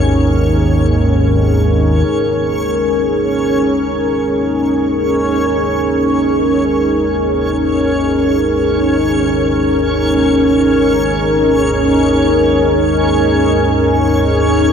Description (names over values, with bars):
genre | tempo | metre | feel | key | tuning
dark ambient drone | free time | none | none | unclear | A4 = 440 Hz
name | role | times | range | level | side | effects
deep dark ambient pad | sustained chords | 0.0-14.7 s | C#4 to A#4 | -13 LUFS | equal | chorus, built-in reverb
analog drone | drone | 0.0-14.7 s | G#1 to D#2 | -18 LUFS | equal | wide subtle chorus
backwards swelling texture | texture | 0.0-14.7 s | C#4 to C#5 | -20 LUFS | equal | built-in reverb
room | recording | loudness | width
wet huge ambient reverb, RT60 7.4 s | none | -11 LUFS | side -7 dB against mid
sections
0.0-2.1 A section; 2.1-14.7 B section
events
fade-in on synth drone 2.1-14.7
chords
0.0 G#sus2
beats
free time